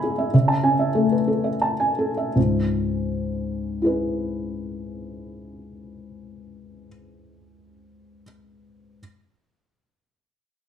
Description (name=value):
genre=neoclassical minimalist piano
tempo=79-102 BPM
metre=3/4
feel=rubato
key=C# minor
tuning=A4 = 440 Hz
part: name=felt-muted upright piano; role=solo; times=0.0-9.0 s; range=C#2 to B5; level=-20 LUFS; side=equal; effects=none
room=moderate large studio reverb, RT60 0.9 s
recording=band playing live in one room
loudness=-20 LUFS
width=side -9 dB against mid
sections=0.0-2.4 A section; 2.4-6.8 B section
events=slowing down 0.0-2.4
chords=0.0 C#m7